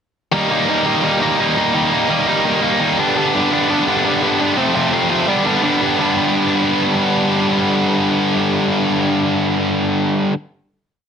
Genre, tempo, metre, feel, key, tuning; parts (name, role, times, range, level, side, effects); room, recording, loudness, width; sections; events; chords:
punk; 169 BPM; 4/4; straight; G mixolydian; A4 = 440 Hz
tight distorted guitar; solo; 0.3-10.3 s; F2 to Eb4; -14 LUFS; equal; distortion
light reverb; dense, heavily limited modern master; -14 LUFS; side -7 dB against mid
0.3-6.0 chorus; 6.0-8.8 final chord
0.3 Eb; 3.0 G; 4.6 F; 5.3 G